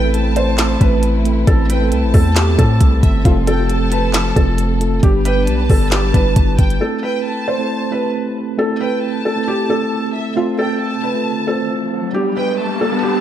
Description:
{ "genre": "hip hop, trap", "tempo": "135 BPM", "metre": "4/4", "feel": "half-time", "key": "A minor", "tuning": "A4 = 440 Hz", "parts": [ { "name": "felt-muted upright piano", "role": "melody", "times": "0.0-13.2 s", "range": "F4 to C5", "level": "-21 LUFS", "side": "right 1 dB", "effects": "analog delay" }, { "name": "warm studio violin section", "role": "second line", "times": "0.0-13.2 s", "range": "E5 to A5", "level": "-26 LUFS", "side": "left 1 dB", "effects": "analog delay" }, { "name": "mellow tine electric piano", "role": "accompaniment", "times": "0.0-13.2 s", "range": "G3 to C5", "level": "-20 LUFS", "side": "right 1 dB", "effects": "medium stereo tremolo" }, { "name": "dark studio string section", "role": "sustained chords", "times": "0.0-6.8 s", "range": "F3 to B4", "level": "-27 LUFS", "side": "left 1 dB", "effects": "none" }, { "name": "hard-hitting 808-style bass", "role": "bass", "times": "0.0-6.8 s", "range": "F1 to A2", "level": "-16 LUFS", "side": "equal", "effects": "none" }, { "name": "minimal click drum kit", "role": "drums", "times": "0.1-6.8 s", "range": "handclaps, hi-hat, kick drum, snare drum", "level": "-15 LUFS", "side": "equal", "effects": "none" }, { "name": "mellow brass ensemble", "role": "stabs", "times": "3.3-3.6 s", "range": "C2 to F3", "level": "-32 LUFS", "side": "left 5 dB", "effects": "none" }, { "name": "riser", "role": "sound effects", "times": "11.1-13.2 s", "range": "none", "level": "-25 LUFS", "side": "left 3 dB", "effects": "none" } ], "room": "light reverb, small room ambience", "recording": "none", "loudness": "-14 LUFS", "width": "side -11 dB against mid", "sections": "0.0-6.8 A section; 6.8-13.2 B section", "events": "riser 11.1-13.2", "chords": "0.0 Am; 3.3 F; 5.0 G; 6.8 Am; 10.4 F; 12.1 G" }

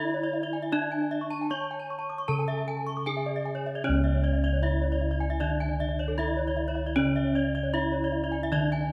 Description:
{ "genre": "Balinese gamelan", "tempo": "77 BPM", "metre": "4/4", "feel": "straight", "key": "C# pelog", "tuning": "A4 = 439 Hz", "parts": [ { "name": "gamelan-type bronze metallophone", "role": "melody", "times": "0.0-8.9 s", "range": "C#4 to C#5", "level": "-34 LUFS", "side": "equal", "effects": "none" }, { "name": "gamelan-type bronze metallophone", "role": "arpeggios", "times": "0.0-8.8 s", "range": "C#5 to C#6", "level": "-37 LUFS", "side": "equal", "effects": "none" }, { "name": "gamelan-type bronze metallophone", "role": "arpeggios", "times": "0.0-8.9 s", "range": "A4 to D6+35c", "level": "-38 LUFS", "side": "equal", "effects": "none" }, { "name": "gamelan-type bossed gongs", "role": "bass", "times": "0.0-8.9 s", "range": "C#2 to D4+35c", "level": "-32 LUFS", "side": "equal", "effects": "none" }, { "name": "gamelan-type bronze metallophone", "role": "accompaniment", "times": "3.8-8.9 s", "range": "C#3 to D3+35c", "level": "-35 LUFS", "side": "equal", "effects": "none" } ], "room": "moderate scoring stage reverb, RT60 1.8 s", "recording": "none", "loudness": "-28 LUFS", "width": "mono", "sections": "0.0-8.9 A section", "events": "none", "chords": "none" }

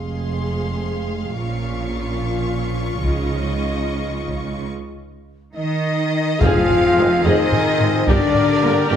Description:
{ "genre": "cinematic, epic orchestral film score", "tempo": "72 BPM (dotted quarters)", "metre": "6/8", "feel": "straight", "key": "F minor", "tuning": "A4 = 441 Hz", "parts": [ { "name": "bright symphonic violin section", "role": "melody", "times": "0.0-9.0 s", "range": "D5 to Db6", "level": "-30 LUFS", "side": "left 5 dB", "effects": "none" }, { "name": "rich symphonic violin section", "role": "second line", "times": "0.0-4.7, 7.3-9.0 s", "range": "Ab4 to F5", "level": "-30 LUFS", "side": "left 4 dB", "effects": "none" }, { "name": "rich symphonic viola section", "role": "accompaniment", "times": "0.0-9.0 s", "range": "Bb3 to Bb4", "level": "-27 LUFS", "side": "equal", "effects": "none" }, { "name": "mellow French horn section", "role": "sustained chords", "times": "0.0-9.0 s", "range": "F3 to F4", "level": "-23 LUFS", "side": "left 4 dB", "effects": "none" }, { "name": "rich symphonic cello section", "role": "bass", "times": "0.0-9.0 s", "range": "F2 to F3", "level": "-26 LUFS", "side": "right 2 dB", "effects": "none" }, { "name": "rich symphonic double bass section", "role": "bass", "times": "0.0-9.0 s", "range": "F1 to G2", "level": "-25 LUFS", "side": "right 3 dB", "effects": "none" }, { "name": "taiko ensemble", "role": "drums", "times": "3.0-8.6 s", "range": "none", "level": "-22 LUFS", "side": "equal", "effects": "none" }, { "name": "mellow trumpet", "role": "stabs", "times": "5.5-9.0 s", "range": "D5 to F5", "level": "-25 LUFS", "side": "right 4 dB", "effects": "none" }, { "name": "large flute ensemble", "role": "second line", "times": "5.6-9.0 s", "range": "D5 to F5", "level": "-27 LUFS", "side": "left 2 dB", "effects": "none" }, { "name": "chamber organ, soft reed", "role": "sustained chords", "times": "6.4-9.0 s", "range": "C4 to Ab5", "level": "-26 LUFS", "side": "equal", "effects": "none" }, { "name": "warm tuba", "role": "bass", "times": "6.4-9.0 s", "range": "F1 to G1", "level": "-26 LUFS", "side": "right 3 dB", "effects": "none" }, { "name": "timpani", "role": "percussion", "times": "6.4-7.2 s", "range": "F2", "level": "-25 LUFS", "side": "left 1 dB", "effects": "none" }, { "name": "impact", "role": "sound effects", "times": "6.4-8.1 s", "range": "none", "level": "-32 LUFS", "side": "equal", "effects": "none" }, { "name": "warm trombone section", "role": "sustained chords", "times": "7.0-8.7 s", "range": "C3 to Bb3", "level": "-30 LUFS", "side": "right 3 dB", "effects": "none" } ], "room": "moderate scoring stage reverb, RT60 1.6 s", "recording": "none", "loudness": "-17 LUFS", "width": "side -9 dB against mid", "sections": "0.0-6.4 A section; 6.4-9.0 B section", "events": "drum fill 5.6-6.4; impact 6.4-8.1", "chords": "0.0 Fm; 1.4 Bbm; 3.0 Dbadd9; 4.7 N.C.; 6.4 Fm; 8.1 Gm" }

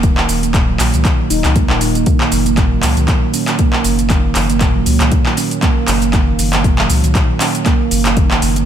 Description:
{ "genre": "afro house", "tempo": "118 BPM", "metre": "4/4", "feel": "swing 56% on 16ths", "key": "unclear", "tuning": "A4 = 440 Hz", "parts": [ { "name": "handpan", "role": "arpeggios", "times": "0.0-8.7 s", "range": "Bb2 to Eb4", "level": "-17 LUFS", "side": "right 5 dB", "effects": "sidechain pumping, dub echo" }, { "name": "round analog bass", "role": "bass", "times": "0.0-8.7 s", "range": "Eb1 to Db2", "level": "-17 LUFS", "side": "left 1 dB", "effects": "sidechain pumping" }, { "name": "deep house drum kit", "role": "drums", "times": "0.0-8.7 s", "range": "handclaps, hi-hat, shaker", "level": "-18 LUFS", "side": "equal", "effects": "overdrive, small room ambience" }, { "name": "electronic kick drum", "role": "drums", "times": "0.0-8.3 s", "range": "none", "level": "-14 LUFS", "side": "left 1 dB", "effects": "small room ambience" } ], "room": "light reverb, digital ambience", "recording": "none", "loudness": "-11 LUFS", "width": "side -9 dB against mid", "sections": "0.0-8.7 A section", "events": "none", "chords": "0.0 Eb7(no3); 2.1 Gb" }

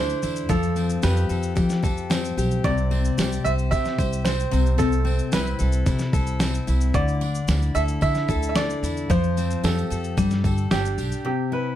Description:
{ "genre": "acoustic pop", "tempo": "112 BPM", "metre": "4/4", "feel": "straight", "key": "C major", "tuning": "A4 = 436 Hz", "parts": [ { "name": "bright upright piano", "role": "melody", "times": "0.0-11.8 s", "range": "G4 to E5", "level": "-28 LUFS", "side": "right 5 dB", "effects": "none" }, { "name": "picked steel-string acoustic guitar", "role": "accompaniment", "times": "0.0-11.8 s", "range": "C3 to C5", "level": "-26 LUFS", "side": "left 5 dB", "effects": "none" }, { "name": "upright bass", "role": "bass", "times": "0.0-11.1 s", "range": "G1 to F3", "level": "-24 LUFS", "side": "equal", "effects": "none" }, { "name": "dusty soul sampler-style drum kit", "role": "drums", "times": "0.1-11.2 s", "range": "kick drum, shaker, snare drum", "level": "-25 LUFS", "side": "equal", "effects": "overdrive" }, { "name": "tambourine", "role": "percussion", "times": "0.2-11.1 s", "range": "none", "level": "-41 LUFS", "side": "right 8 dB", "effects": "none" } ], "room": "light reverb", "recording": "none", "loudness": "-20 LUFS", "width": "side -12 dB against mid", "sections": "0.0-11.2 A section", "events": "none", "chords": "0.5 Fadd9; 2.6 C; 4.5 Amadd9/C; 6.9 Dsus2; 9.1 Fadd9; 10.2 Gsus2; 11.2 C" }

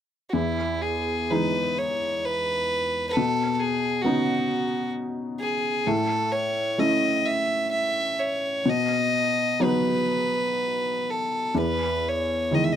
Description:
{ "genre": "celtic folk, Celtic slow air", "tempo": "61-70 BPM", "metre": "3/4", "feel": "rubato", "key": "E major", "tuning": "A4 = 441 Hz", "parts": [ { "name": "warm fiddle", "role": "melody", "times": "0.3-12.8 s", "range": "E4 to E5", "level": "-25 LUFS", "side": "equal", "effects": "none" }, { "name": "felt-muted upright piano", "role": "accompaniment", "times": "0.3-12.8 s", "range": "E2 to E4", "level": "-26 LUFS", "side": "left 1 dB", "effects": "none" } ], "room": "light reverb", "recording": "close, detailed microphones", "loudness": "-22 LUFS", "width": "side -9 dB against mid", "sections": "0.3-12.8 A section", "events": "none", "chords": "0.3 Emaj7; 3.2 Badd9; 5.9 A; 8.6 B; 11.6 Emaj7" }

